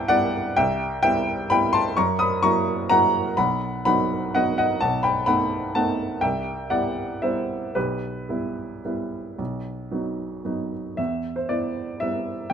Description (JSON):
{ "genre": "classical, piano waltz", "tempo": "106-135 BPM", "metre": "3/4", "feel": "rubato", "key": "E minor", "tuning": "A4 = 442 Hz", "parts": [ { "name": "clear upright piano", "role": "solo", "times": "0.0-12.5 s", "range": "B1 to D#6", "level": "-21 LUFS", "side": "equal", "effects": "none" } ], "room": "light reverb", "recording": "close, detailed microphones", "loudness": "-21 LUFS", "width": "side -8 dB against mid", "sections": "0.0-11.0 A section; 11.0-12.5 B section", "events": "none", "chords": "0.0 Cmaj7; 2.0 F#7; 3.4 B; 4.8 B7; 6.2 Cmaj7; 7.8 Em/B; 9.4 B; 11.0 Em", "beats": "0.10 | 0.57 1.03 1.50 | 1.97 2.43 2.90 | 3.38 3.85 4.35 | 4.81 5.27 5.75 | 6.22 6.70 7.23 | 7.75 8.29 8.85 | 9.39 9.92 10.45 | 10.98 11.50 12.01 | 12.51" }